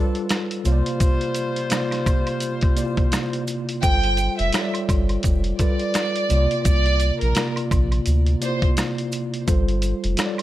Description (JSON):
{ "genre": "hip hop, boom-bap hip-hop", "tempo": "85 BPM", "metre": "4/4", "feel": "swing 59% on 16ths", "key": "unclear", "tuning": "A4 = 439 Hz", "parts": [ { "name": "mellow tine electric piano", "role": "accompaniment", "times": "0.0-10.4 s", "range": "C3 to D5", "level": "-25 LUFS", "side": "equal", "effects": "medium stereo tremolo, cassette tape, high-pass filter, low-pass filter" }, { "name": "warm horn section", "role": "stabs", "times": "0.0-3.4 s", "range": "F3 to C5", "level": "-30 LUFS", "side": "left 2 dB", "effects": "high-pass filter, low-pass filter, ping-pong delay" }, { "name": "dusty soul sampler-style drum kit", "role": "drums", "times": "0.1-10.4 s", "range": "hi-hat, kick drum, rim click, snare drum", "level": "-22 LUFS", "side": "equal", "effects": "none" }, { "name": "maracas and woodblock", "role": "percussion", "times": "0.3-10.4 s", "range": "none", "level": "-36 LUFS", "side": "right 5 dB", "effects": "none" }, { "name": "soft dub sub bass", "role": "bass", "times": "0.7-10.2 s", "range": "F1 to D2", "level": "-20 LUFS", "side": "equal", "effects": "none" }, { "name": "warm chamber violin section", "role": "melody", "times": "3.8-8.6 s", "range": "Bb4 to G5", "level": "-25 LUFS", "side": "right 3 dB", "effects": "high-pass filter, low-pass filter" } ], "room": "small room reverb", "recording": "none", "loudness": "-19 LUFS", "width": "side -14 dB against mid", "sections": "0.0-3.8 A section; 3.8-10.4 A section", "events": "none", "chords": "0.0 G9sus4; 0.7 C9sus4; 3.8 G9sus4; 6.3 C9sus4; 9.5 G9sus4", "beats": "0.30 | 1.01 1.71 2.42 3.12 | 3.83 4.54 5.24 5.95 | 6.65 7.36 8.07 8.77 | 9.48 10.18" }